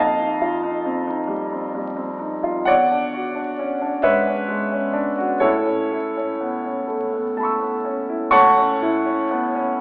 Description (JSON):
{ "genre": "classical, impressionist solo piano", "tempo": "39-46 BPM (dotted quarters)", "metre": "6/8", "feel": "rubato", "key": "A lydian", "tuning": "A4 = 440 Hz", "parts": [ { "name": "clear concert grand piano", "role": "solo", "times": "0.0-9.8 s", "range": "E2 to E6", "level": "-18 LUFS", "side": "equal", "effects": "none" } ], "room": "wet recital hall reverb, RT60 1.8 s", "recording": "vinyl crackle, AM radio sound", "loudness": "-18 LUFS", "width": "side -27 dB against mid", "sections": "0.0-8.3 A section; 8.3-9.8 B section", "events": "none", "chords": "0.0 F9; 2.7 E13; 5.4 Aadd9", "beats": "1.29 | 2.67 4.06 | 5.43 6.85 | 8.30 9.77" }